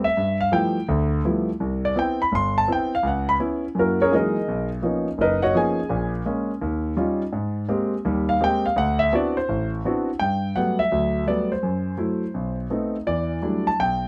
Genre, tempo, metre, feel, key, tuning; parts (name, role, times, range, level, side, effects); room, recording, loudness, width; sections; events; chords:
solo jazz; 167 BPM; 4/4; swing 64% on 8ths; A4 = 440 Hz
warm concert grand piano; solo; 0.0-14.1 s; F#1 to C6; -23 LUFS; equal
light reverb; close, detailed microphones; -23 LUFS; mono
0.0-10.2 A section; 10.2-14.1 B section
grand piano solo 0.0-10.2
0.2 G13; 1.6 Cmaj7; 3.0 C#m7; 3.8 F#13; 4.5 Bmaj9#11; 5.9 Bbm7; 6.6 Eb9; 7.3 Abmaj9; 8.8 D13; 10.2 Gmaj9; 11.6 F#m7b5; 12.3 B7b9; 13.1 Em11